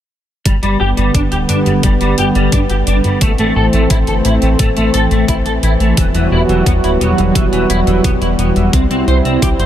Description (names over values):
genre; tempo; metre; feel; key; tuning
synthwave; 87 BPM; 4/4; straight; G major; A4 = 440 Hz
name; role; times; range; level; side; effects
warm analog pad; sustained chords; 0.5-9.7 s; D3 to F#4; -15 LUFS; right 1 dB; chorus, sidechain pumping
clean electric guitar; riff; 0.5-9.6 s; E3 to C5; -18 LUFS; left 1 dB; ensemble chorus, low-pass filter, analog delay
chorused synth bass; bass; 0.5-9.7 s; D1 to C2; -16 LUFS; equal; sidechain pumping
electronic hi-hat; drums; 0.5-9.7 s; none; -23 LUFS; equal; overdrive
electronic kick drum; drums; 0.5-9.6 s; none; -15 LUFS; equal; overdrive
room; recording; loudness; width
light reverb, digital ambience; none; -11 LUFS; side -11 dB against mid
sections
0.5-9.7 A section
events
filter sweep on analog synth bass 0.5-9.7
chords
0.5 G; 3.2 Am; 6.0 Emadd9; 8.7 C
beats
| 0.46 1.15 1.84 2.53 | 3.22 3.91 4.60 5.29 | 5.97 6.67 7.35 8.04 | 8.73 9.42